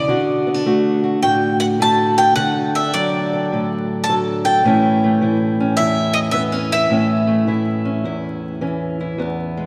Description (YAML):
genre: acoustic country blues, solo or duo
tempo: 106 BPM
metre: 4/4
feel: swing 66% on 8ths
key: A major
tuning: A4 = 440 Hz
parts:
  - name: bowl-back mandolin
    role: melody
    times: 0.0-8.9 s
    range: D5 to A5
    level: -21 LUFS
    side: equal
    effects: none
  - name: fingerpicked steel-string acoustic guitar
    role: accompaniment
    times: 0.0-9.7 s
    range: E2 to A4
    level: -20 LUFS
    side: equal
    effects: none
room: wet cathedral reverb, RT60 5.5 s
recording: in a vast, echoing space, vinyl crackle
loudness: -18 LUFS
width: mono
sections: 0.0-9.7 A section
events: none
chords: 0.1 D; 4.6 A